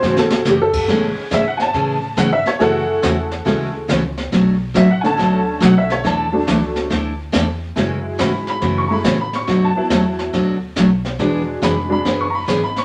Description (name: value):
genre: country, western swing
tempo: 140 BPM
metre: 4/4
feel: swing 66% on 8ths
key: A major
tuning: A4 = 440 Hz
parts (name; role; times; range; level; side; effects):
- honky-tonk upright piano; accompaniment; 0.0-12.8 s; B2 to C#6; -21 LUFS; equal; none
- picked steel-string acoustic guitar; accompaniment; 0.0-12.6 s; B2 to A4; -20 LUFS; equal; none
- upright bass; bass; 0.0-12.8 s; E1 to A2; -31 LUFS; equal; none
- jazz brush drum kit; drums; 0.0-12.8 s; brushed snare drum, crash cymbal, hi-hat, kick drum, snare drum; -25 LUFS; equal; none
room: wet studio reverb, RT60 0.5 s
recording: none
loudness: -17 LUFS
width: mono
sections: 0.0-12.8 A section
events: honky-tonk piano solo 0.0-12.8; drum fill 0.0-0.5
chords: 0.0 A6; 0.9 Amaj7; 2.6 F#m7; 4.3 Bm7; 6.0 E9sus4; 7.8 F#m9; 9.5 D6; 11.2 E7